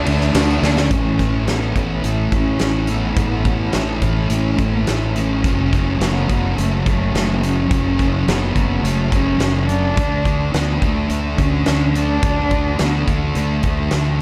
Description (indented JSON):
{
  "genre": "rock, shoegaze and dream pop",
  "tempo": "106 BPM",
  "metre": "4/4",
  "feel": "straight",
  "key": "unclear",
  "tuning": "A4 = 436 Hz",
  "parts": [
    { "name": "dark cello", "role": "melody", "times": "0.0-14.2 s", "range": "A3 to D4", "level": "-26 LUFS", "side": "equal", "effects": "digital delay" },
    { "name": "crunchy overdriven guitar", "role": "riff", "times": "0.0-14.2 s", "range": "F#2 to F#4", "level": "-29 LUFS", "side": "equal", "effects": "reverse reverb" },
    { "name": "crunchy overdriven guitar", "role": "riff", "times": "0.0-0.9 s", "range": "D3 to D4", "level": "-25 LUFS", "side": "equal", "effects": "none" },
    { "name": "thick fuzz guitar", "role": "riff", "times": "0.0-14.2 s", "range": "F#2 to D4", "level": "-25 LUFS", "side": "equal", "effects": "distortion, analog chorus" },
    { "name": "fuzz fingered electric bass", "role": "bass", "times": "0.0-14.2 s", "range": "F#1 to D2", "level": "-23 LUFS", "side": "equal", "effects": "overdrive" },
    { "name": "huge arena drum kit", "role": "drums", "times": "0.1-14.0 s", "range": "hi-hat, kick drum, ride cymbal, snare drum", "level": "-24 LUFS", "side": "equal", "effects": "none" },
    { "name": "tambourine", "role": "percussion", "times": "0.1-0.9 s", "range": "none", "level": "-39 LUFS", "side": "equal", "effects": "none" }
  ],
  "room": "little or no reverb",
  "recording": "dark, warm production",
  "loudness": "-18 LUFS",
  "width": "mono",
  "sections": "0.9-14.2 A section",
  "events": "drum fill 0.6",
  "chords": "0.0 D; 0.9 A; 5.4 F#m; 10.0 D",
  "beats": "0.35 | 0.91 1.48 2.04 2.61 | 3.17 3.74 4.31 4.87 | 5.44 6.01 6.57 7.14 | 7.71 8.27 8.84 9.40 | 9.97 10.54 11.10 11.67 | 12.23 12.79 13.36 13.92"
}